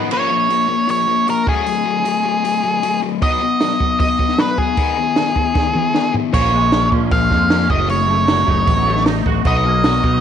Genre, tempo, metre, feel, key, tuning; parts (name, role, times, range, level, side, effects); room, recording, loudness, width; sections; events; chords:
indie rock; 154 BPM; 4/4; straight; A4 = 440 Hz
fuzz guitar; riff; 0.0-10.2 s; D#3 to D#4; -20 LUFS; left 12 dB; distortion
twangy electric guitar; riff; 0.0-0.1, 6.3-10.2 s; F#2 to G#4; -25 LUFS; right 15 dB; ensemble chorus, slapback echo
octave-fuzz lead guitar; melody; 0.1-10.2 s; G#4 to E#5; -17 LUFS; right 1 dB; distortion, slapback echo
compact cocktail drum kit; drums; 0.1-10.1 s; crash cymbal, hi-hat, kick drum, snare drum, toms; -20 LUFS; right 1 dB
growling fingered electric bass; bass; 6.3-10.2 s; F#1 to B2; -19 LUFS; right 1 dB; overdrive
light reverb, small room ambience; 1960s-style stereo with parts hard left and right; -14 LUFS; side -8 dB against mid
0.1-10.2 A section
drum fill 5.6-6.3
0.1 A#m; 1.5 F#m; 3.2 B; 4.8 G#m; 6.3 A#m7; 7.7 F#m6; 9.5 Bmaj7